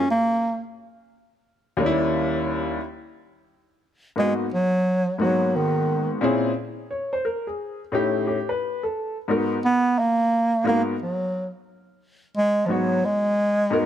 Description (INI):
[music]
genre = hip hop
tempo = 88 BPM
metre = 4/4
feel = swing 65% on 16ths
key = unclear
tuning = A4 = 438 Hz
[part]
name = warm bass clarinet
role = melody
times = 0.0-13.9 s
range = D#3 to B3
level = -20 LUFS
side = right 1 dB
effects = none
[part]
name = warm upright piano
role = accompaniment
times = 1.8-13.9 s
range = D#2 to C#5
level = -24 LUFS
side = left 2 dB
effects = none
[sound]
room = light reverb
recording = none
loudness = -21 LUFS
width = side -10 dB against mid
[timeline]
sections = 0.0-3.5 A section; 3.5-13.9 B section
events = none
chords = 0.0 N.C.; 0.8 D#7b9; 3.5 G#m9; 6.2 A#m7b5; 7.6 A7#11; 8.9 G#m9